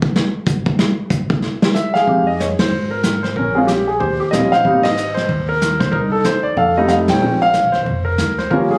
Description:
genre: jazz piano trio.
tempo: 186 BPM.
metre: 4/4.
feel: swing 61% on 8ths.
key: F minor.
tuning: A4 = 441 Hz.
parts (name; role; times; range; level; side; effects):
vintage brush drum kit; drums; 0.0-8.8 s; brushed snare drum, hi-hat, kick drum, ride cymbal, snare drum; -22 LUFS; equal; none.
warm grand piano; melody; 1.7-8.8 s; F3 to G5; -18 LUFS; equal; none.
upright bass; bass; 2.1-8.8 s; F1 to Ab2; -25 LUFS; equal; none.
room: moderate studio reverb, RT60 0.5 s.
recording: recorded on a phone in the room, club reverb.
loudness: -17 LUFS.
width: mono.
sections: 0.0-2.1 A section; 2.1-8.8 B section.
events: drum solo 0.0-2.1; band accent 2.6, 4.8, 7.1.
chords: 0.0 N.C.; 2.1 Fm7; 3.4 Bbm7; 4.0 Eb13; 4.6 Abadd9; 5.9 Cm; 6.6 F7; 7.2 Bbmadd9.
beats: 0.14 0.47 | 0.79 1.11 1.43 1.75 | 2.07 2.39 2.71 3.03 | 3.36 3.68 4.00 4.32 | 4.64 4.96 5.29 5.61 | 5.93 6.25 6.57 6.90 | 7.22 7.54 7.86 8.18 | 8.51.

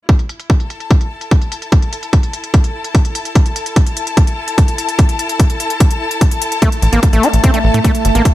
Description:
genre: psychedelic trance.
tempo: 147 BPM.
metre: 4/4.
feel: straight.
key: unclear.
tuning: A4 = 445 Hz.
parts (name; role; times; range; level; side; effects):
electronic hi-hat; drums; 0.1-8.3 s; none; -25 LUFS; equal; overdrive, low-pass filter on hats, small room ambience.
electronic kick drum; drums; 0.1-8.3 s; none; -11 LUFS; equal; overdrive, small room ambience.
rich studio string section; texture; 0.1-8.3 s; A4 to A5; -22 LUFS; left 3 dB; sidechain pumping.
overtone-sweeping drone; sustained chords; 6.9-8.3 s; A3; -20 LUFS; right 3 dB; chorus, built-in reverb, phaser, sidechain pumping.
overdriven acid bass; riff; 6.6-8.2 s; A3 to E4; -16 LUFS; equal; distortion, auto-pan, sidechain pumping, digital delay.
tight sequencer bass; bass; 6.8-8.2 s; G1 to A2; -12 LUFS; equal; tube saturation.
room: digital ambience.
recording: none.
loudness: -12 LUFS.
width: side -15 dB against mid.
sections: 0.1-8.3 A section.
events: fade-in on string section 0.1-8.3.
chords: 0.1 A5.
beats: | 0.09 0.50 0.91 1.31 | 1.72 2.13 2.54 2.95 | 3.35 3.76 4.17 4.58 | 4.99 5.40 5.80 6.21 | 6.62 7.03 7.44 7.84 | 8.25.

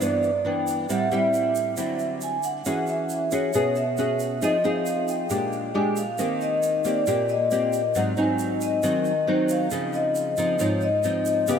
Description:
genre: bossa nova.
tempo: 136 BPM.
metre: 4/4.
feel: straight.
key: unclear.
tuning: A4 = 440 Hz.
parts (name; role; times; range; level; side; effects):
vibraphone with medium mallets; melody; 0.0-11.6 s; C5 to Ab5; -24 LUFS; left 1 dB; ping-pong delay.
nylon-string guitar; accompaniment; 0.0-11.6 s; G2 to G#4; -24 LUFS; equal; analog chorus.
egg shaker; percussion; 0.0-11.6 s; none; -39 LUFS; right 8 dB; none.
room: moderate huge ambient reverb, RT60 4.0 s.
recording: dreamy mix soaked in reverb.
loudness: -22 LUFS.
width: side -7 dB against mid.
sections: 0.0-11.6 A section.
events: none.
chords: 0.0 Cmaj9 (rootless); 0.9 Am7; 1.8 D9; 2.7 E69; 4.4 Fm7; 5.3 Bb6; 6.2 Eb6; 7.9 Ab7; 9.7 Dbmaj9.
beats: 0.01 0.45 | 0.89 1.33 1.77 2.21 | 2.65 3.10 3.54 3.98 | 4.42 4.86 5.30 5.74 | 6.18 6.62 7.06 7.51 | 7.95 8.39 8.83 9.27 | 9.71 10.15 10.60 11.04 | 11.48.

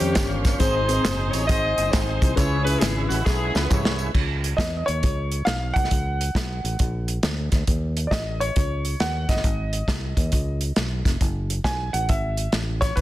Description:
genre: uptempo gospel.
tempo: 136 BPM.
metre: 4/4.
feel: swing 65% on 8ths.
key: C# minor.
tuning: A4 = 445 Hz.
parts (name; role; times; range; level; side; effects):
warm saxophone section; melody; 0.0-4.1 s; A#3 to D#5; -25 LUFS; equal; slapback echo.
tine electric piano; accompaniment; 0.0-3.2 s; G#2 to B#4; -27 LUFS; left 3 dB; medium stereo tremolo.
bright tonewheel organ; sustained chords; 0.0-4.1 s; G3 to B#4; -32 LUFS; right 2 dB; slow rotary speaker, overdrive, chorus vibrato.
fingered electric bass; bass; 0.0-13.0 s; E#1 to E#2; -26 LUFS; equal; none.
warm soul drum kit; drums; 0.0-13.0 s; crash cymbal, hi-hat, kick drum, snare drum, toms; -24 LUFS; equal; none.
tambourine and handclaps; percussion; 0.0-4.1 s; none; -36 LUFS; right 2 dB; none.
warm grand piano; melody; 4.6-13.0 s; B4 to G#5; -28 LUFS; right 1 dB; none.
room: light reverb, studio reverb.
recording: dense, heavily limited modern master.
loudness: -20 LUFS.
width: side -15 dB against mid.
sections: 0.0-4.1 A section; 4.1-13.0 B section.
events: drum fill 3.3-4.1.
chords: 0.0 D#13; 0.6 G#; 2.4 C#m7; 4.1 C#madd9; 5.0 Bsus2; 5.9 F#m/C#; 6.8 A#; 7.7 F#m6 (rootless); 9.4 G#; 10.3 C#7; 11.2 F#m9.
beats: 0.17 | 0.61 1.05 1.49 1.93 | 2.38 2.82 3.26 3.70 | 4.14 4.59 5.03 5.47 | 5.91 6.36 6.80 7.24 | 7.68 8.12 8.56 9.01 | 9.45 9.89 10.33 10.77 | 11.21 11.65 12.09 12.53 | 12.97.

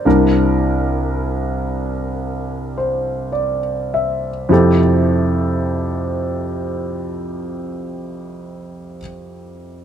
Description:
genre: jazz.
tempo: 49-59 BPM.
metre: 4/4.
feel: swing 69% on 8ths.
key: F major.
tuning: A4 = 440 Hz.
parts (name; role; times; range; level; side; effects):
warm concert grand piano; accompaniment; 0.0-9.8 s; C2 to E5; -17 LUFS; equal; none.
room: light reverb.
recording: close, detailed microphones.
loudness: -16 LUFS.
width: side -9 dB against mid.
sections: 0.0-4.5 A section; 4.5-9.3 B section.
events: slowing down 0.0-4.5.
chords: 0.1 C7; 4.5 Fmaj9.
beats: | 0.06 1.10 2.19 3.32 | 4.50 5.72 6.92 8.13.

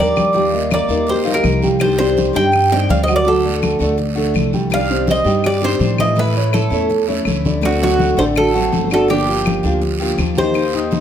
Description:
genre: latin, Cuban son and guajira.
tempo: 165 BPM.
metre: 4/4.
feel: straight.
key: G minor.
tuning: A4 = 440 Hz.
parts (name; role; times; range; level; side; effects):
Cuban tres; melody; 0.0-11.0 s; F#4 to G5; -19 LUFS; right 1 dB; none.
nylon-string guitar; second line; 0.0-11.0 s; D4 to Eb5; -22 LUFS; equal; none.
picked steel-string acoustic guitar; accompaniment; 0.0-11.0 s; C3 to G4; -23 LUFS; left 5 dB; none.
dark concert grand piano; arpeggios; 0.0-11.0 s; D3 to Eb6; -20 LUFS; right 3 dB; none.
upright bass; bass; 0.0-11.0 s; G1 to A2; -21 LUFS; equal; none.
claves; percussion; 0.2-10.7 s; none; -28 LUFS; left 7 dB; none.
congas; percussion; 0.2-11.0 s; none; -23 LUFS; left 2 dB; none.
guiro; percussion; 0.2-11.0 s; none; -31 LUFS; right 7 dB; none.
room: moderate large studio reverb, RT60 0.8 s.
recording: none.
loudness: -14 LUFS.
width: side -9 dB against mid.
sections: 0.0-10.6 A section.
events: none.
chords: 0.3 Ebadd9; 1.8 Cmadd9; 3.3 D; 4.7 Cmadd9; 6.2 A; 7.6 D7; 9.1 Gm7.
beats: | 0.35 0.71 1.08 1.44 | 1.80 2.17 2.53 2.90 | 3.26 3.62 3.99 4.35 | 4.72 5.08 5.45 5.81 | 6.17 6.54 6.90 7.27 | 7.63 8.00 8.36 8.73 | 9.09 9.46 9.82 10.19 | 10.55 10.92.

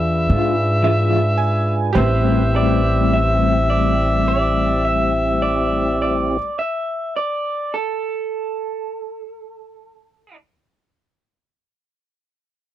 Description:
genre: slow blues.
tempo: 35 BPM (dotted quarters).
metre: 12/8.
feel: straight.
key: A minor.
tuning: A4 = 440 Hz.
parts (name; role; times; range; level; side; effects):
overdriven harmonica; melody; 0.0-6.4 s; E5; -21 LUFS; equal; none.
bright upright piano; accompaniment; 0.0-6.4 s; F4 to G#5; -27 LUFS; right 7 dB; none.
tonewheel organ; sustained chords; 0.0-6.4 s; C4 to B4; -24 LUFS; equal; slow rotary speaker, overdrive.
upright bass; bass; 0.0-6.4 s; A1 to G#2; -20 LUFS; equal; none.
electric guitar through a small old amp; accompaniment; 0.3-6.5 s; A2 to F4; -23 LUFS; left 4 dB; tremolo.
electric guitar through a small old amp; second line; 2.6-10.4 s; A4 to E5; -24 LUFS; right 2 dB; none.
room: little or no reverb.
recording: dry, close 1970s-style studio recording.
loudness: -16 LUFS.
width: side -12 dB against mid.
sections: 0.0-2.0 A section; 2.0-8.9 B section.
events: slowing down 0.0-2.0; upright piano fill 0.3-2.0.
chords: 0.0 E7b9; 2.0 Am7.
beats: 0.30 | 1.95 3.69 5.42 7.16.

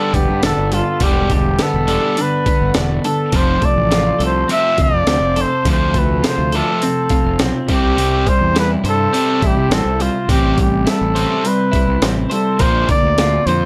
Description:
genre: indie rock.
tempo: 104 BPM.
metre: 4/4.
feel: straight.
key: unclear.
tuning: A4 = 440 Hz.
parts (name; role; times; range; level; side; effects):
breathy trumpet; melody; 0.0-13.7 s; F4 to E5; -21 LUFS; equal; none.
biting overdriven guitar; riff; 0.0-13.7 s; F2 to C4; -24 LUFS; equal; none.
twelve-string electric guitar; riff; 0.0-13.7 s; C3 to C5; -25 LUFS; equal; subtle chorus, analog delay.
fuzz fingered electric bass; bass; 0.1-13.7 s; E1 to C3; -22 LUFS; equal; overdrive.
breakbeat sampler-style drum kit; drums; 0.1-13.6 s; hi-hat, kick drum, snare drum; -21 LUFS; equal; none.
room: light reverb.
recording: none.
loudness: -16 LUFS.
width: mono.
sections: 0.0-13.7 A section.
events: none.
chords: 0.0 Gadd9; 3.3 F; 7.7 C; 12.6 Bbadd9.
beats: 0.44 | 1.02 1.60 2.18 2.76 | 3.34 3.92 4.50 5.08 | 5.66 6.24 6.82 7.40 | 7.98 8.56 9.14 9.72 | 10.30 10.88 11.46 12.03 | 12.61 13.19.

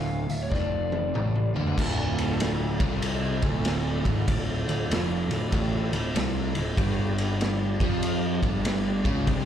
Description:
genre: blues rock power trio and southern rock.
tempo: 96 BPM.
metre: 4/4.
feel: swing 64% on 8ths.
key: D minor.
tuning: A4 = 442 Hz.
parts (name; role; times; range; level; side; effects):
lead guitar through a small cranked amp; melody; 0.0-1.5 s; C#5 to F5; -33 LUFS; left 4 dB; overdrive, slapback echo.
percussive tonewheel organ; sustained chords; 0.0-9.5 s; D4 to F5; -37 LUFS; right 3 dB; slow rotary speaker, overdrive, chorus vibrato.
overdriven semi-hollow guitar; riff; 0.0-9.5 s; D2 to F3; -28 LUFS; right 1 dB; slapback echo.
fuzz picked electric bass; bass; 0.0-9.5 s; D1 to F2; -29 LUFS; equal; overdrive.
vintage drum kit; drums; 0.3-9.5 s; crash cymbal, hi-hat, kick drum, ride cymbal, snare drum, toms; -28 LUFS; equal; none.
room: small room ambience.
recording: live gig heard through the venue's PA, club reverb.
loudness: -24 LUFS.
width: side -9 dB against mid.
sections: 0.0-1.8 A section; 1.8-9.5 B section.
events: drum fill 0.5-1.8.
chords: 0.0 Dm; 6.8 G5.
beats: 0.52 1.15 | 1.77 2.40 3.03 3.65 | 4.28 4.90 5.52 6.15 | 6.77 7.40 8.02 8.65 | 9.28.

